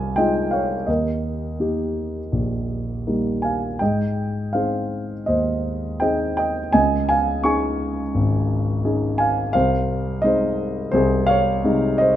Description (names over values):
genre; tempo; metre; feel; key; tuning
classical, lyrical solo piano; 84 BPM; 4/4; rubato; Ab major; A4 = 442 Hz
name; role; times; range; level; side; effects
dark concert grand piano; solo; 0.0-12.2 s; Ab1 to Db6; -19 LUFS; equal; none
room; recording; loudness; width
moderate recital hall reverb, RT60 1.7 s; nothing above 10.6 kHz; -19 LUFS; side -11 dB against mid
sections
0.0-12.2 A section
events
none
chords
0.0 Fm7; 0.9 Eb; 3.8 Ab; 6.7 Dbsus2; 9.5 Ab/C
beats
0.18 | 0.88 1.60 2.32 3.06 | 3.81 4.54 5.27 6.01 | 6.73 7.44 8.14 8.84 | 9.54 10.23 10.93 11.64